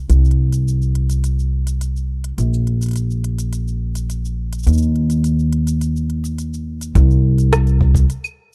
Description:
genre	folktronica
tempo	105 BPM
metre	4/4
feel	straight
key	C minor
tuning	A4 = 440 Hz
part	upright bass	bass	0.0-8.0 s	Bb1 to Eb2	-18 LUFS	equal	none
part	organic electronic drum kit	drums	0.1-8.4 s	cabasa, claves, hi-hat, rim click	-28 LUFS	equal	none
part	kick drum	drums	7.0-8.1 s	none	-20 LUFS	equal	none
room	little or no reverb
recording	dry, close 1970s-style studio recording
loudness	-18 LUFS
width	mono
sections	0.0-7.0 A section; 7.0-8.5 B section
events	none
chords	none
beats	| 0.10 0.67 1.24 1.81 | 2.38 2.96 3.53 4.10 | 4.67 5.24 5.81 6.38 | 6.96 7.53 8.10

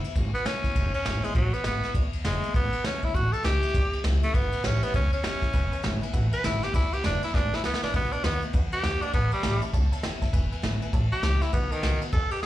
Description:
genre	rockabilly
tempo	200 BPM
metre	4/4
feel	swing 61% on 8ths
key	E mixolydian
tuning	A4 = 439 Hz
part	raspy tenor saxophone	melody	0.0-12.5 s	D#3 to B4	-29 LUFS	equal	slapback echo
part	picked steel-string acoustic guitar	accompaniment	0.0-12.5 s	E2 to F#4	-36 LUFS	left 3 dB	slapback echo
part	upright bass	bass	0.0-12.5 s	E1 to E2	-28 LUFS	equal	none
part	vintage brush drum kit	drums	0.0-12.5 s	kick drum, ride cymbal, snare drum	-28 LUFS	equal	none
part	tack piano	accompaniment	5.5-12.4 s	B4 to B5	-41 LUFS	right 3 dB	slapback echo
room	small room ambience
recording	live gig heard through the venue's PA, club reverb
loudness	-23 LUFS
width	side -14 dB against mid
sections	0.0-12.5 A section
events	tenor saxophone solo 0.0-12.5; drum fill 7.3-7.9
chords	0.0 E7; 3.1 A7; 5.5 E7; 7.9 B7; 9.1 A7; 10.3 E7; 10.9 A7; 11.5 B7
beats	0.16 0.46 | 0.76 1.05 1.35 1.65 | 1.95 2.25 2.55 2.85 | 3.15 3.45 3.75 4.05 | 4.35 4.64 4.95 5.24 | 5.54 5.84 6.14 6.44 | 6.74 7.04 7.34 7.64 | 7.94 8.24 8.54 8.84 | 9.14 9.44 9.73 10.03 | 10.33 10.63 10.93 11.23 | 11.53 11.83 12.13 12.43

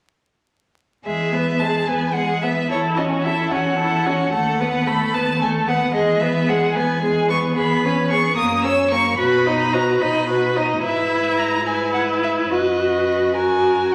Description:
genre	quick classical-period movement for string quartet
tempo	73 BPM (dotted quarters)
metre	6/8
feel	straight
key	E major, B major from 7.6 s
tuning	A4 = 440 Hz
part	rich violin	melody	1.1-13.9 s	C#5 to E6	-25 LUFS	equal	none
part	rich violin	second line	1.1-13.9 s	F#4 to D#5	-26 LUFS	equal	none
part	rich viola	accompaniment	1.1-13.9 s	G#3 to F#4	-23 LUFS	equal	none
part	rich cello	bass	1.1-13.9 s	D#2 to B2	-28 LUFS	equal	none
room	wet recital hall reverb, RT60 1.5 s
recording	vinyl crackle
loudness	-19 LUFS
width	mono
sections	1.1-13.9 A section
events	none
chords	1.1 E; 2.7 F#m7/E; 4.3 B7/D#; 5.9 E; 7.6 C#m7/E; 8.4 F#; 9.2 B; 10.8 E/G#; 12.5 B/F#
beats	| 1.05 1.87 | 2.70 3.52 | 4.33 5.14 | 5.95 6.76 | 7.56 8.37 | 9.18 10.00 | 10.82 11.65 | 12.50 13.35

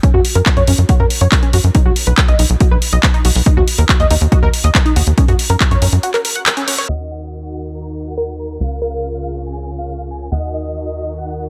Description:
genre	uplifting trance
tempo	140 BPM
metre	4/4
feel	straight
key	Eb minor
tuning	A4 = 441 Hz
part	tight sequenced synth	arpeggios	0.0-6.9 s	Db4 to Gb5	-22 LUFS	equal	chorus, phaser, sidechain pumping, tape echo
part	electronic kick drum	drums	0.0-5.7 s	none	-16 LUFS	equal	none
part	house drum kit	drums	0.0-7.0 s	crash cymbal, handclaps, hi-hat	-20 LUFS	equal	sidechain pumping on hats, low-pass filter on hats, low-pass filter on snare, sidechain pumping on cymbals, low-pass filter on cymbals
part	tight sequencer bass	bass	0.1-11.5 s	B1 to Gb2	-18 LUFS	equal	sidechain pumping
part	dense compressed supersaw	melody	6.9-11.4 s	Eb5 to Bb5	-32 LUFS	equal	sidechain pumping, low-pass filter, tape echo
part	glassy wavetable pluck	second line	6.9-10.9 s	Bb4 to Gb5	-28 LUFS	equal	chorus, delay
part	clear studio string section	sustained chords	6.9-11.5 s	Db3 to Bb4	-30 LUFS	equal	sidechain pumping
room	little or no reverb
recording	low-pass filter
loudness	-14 LUFS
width	mono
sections	0.0-6.9 A section; 6.9-11.5 B section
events	break 6.0-6.9; band accent 6.5; filter sweep 6.9-11.5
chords	0.0 Gb; 1.7 B; 3.5 Ebm; 5.2 Gb; 6.9 Ebm; 8.6 Bbm/Db; 10.3 Ebm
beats	| 0.03 0.46 0.89 1.32 | 1.75 2.18 2.60 3.03 | 3.46 3.89 4.32 4.75 | 5.18 5.61 6.03 6.46 | 6.89 7.32 7.75 8.18 | 8.61 9.03 9.46 9.89 | 10.32 10.75 11.18

